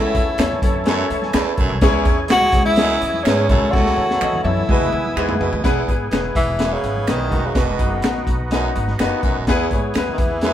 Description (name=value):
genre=uptempo 1960s-style soul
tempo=126 BPM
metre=4/4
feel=straight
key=E major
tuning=A4 = 440 Hz
part: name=breathy tenor saxophone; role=melody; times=0.0-10.5 s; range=B2 to F#4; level=-20 LUFS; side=left 1 dB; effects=tape echo
part: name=clear baby grand piano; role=accompaniment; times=0.0-10.5 s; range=C#3 to C#6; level=-24 LUFS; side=left 3 dB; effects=none
part: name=overdriven tonewheel organ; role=sustained chords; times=0.0-10.5 s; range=E3 to A4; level=-28 LUFS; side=right 1 dB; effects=chorus vibrato
part: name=growling baritone saxophone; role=riff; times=0.0-10.5 s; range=D#2 to B2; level=-25 LUFS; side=right 4 dB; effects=none
part: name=upright bass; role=bass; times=0.0-10.5 s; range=D#1 to G#2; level=-24 LUFS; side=equal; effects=none
part: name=crunchy breakbeat drum kit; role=drums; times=0.1-10.5 s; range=hi-hat, kick drum, snare drum, toms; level=-20 LUFS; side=equal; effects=none
part: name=congas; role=percussion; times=0.4-10.5 s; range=none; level=-34 LUFS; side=right 3 dB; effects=none
part: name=finger snaps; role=percussion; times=0.4-10.1 s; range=none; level=-30 LUFS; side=right 3 dB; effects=none
room=moderate stone room reverb, RT60 1.0 s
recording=band playing live in one room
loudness=-16 LUFS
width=side -11 dB against mid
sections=0.0-5.6 A section; 5.6-10.5 B section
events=grand piano fill 0.9-1.8; drum fill 3.7-5.6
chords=0.0 A/C#; 1.8 C#m; 3.5 A/C#; 4.7 E; 7.3 B/E; 9.5 E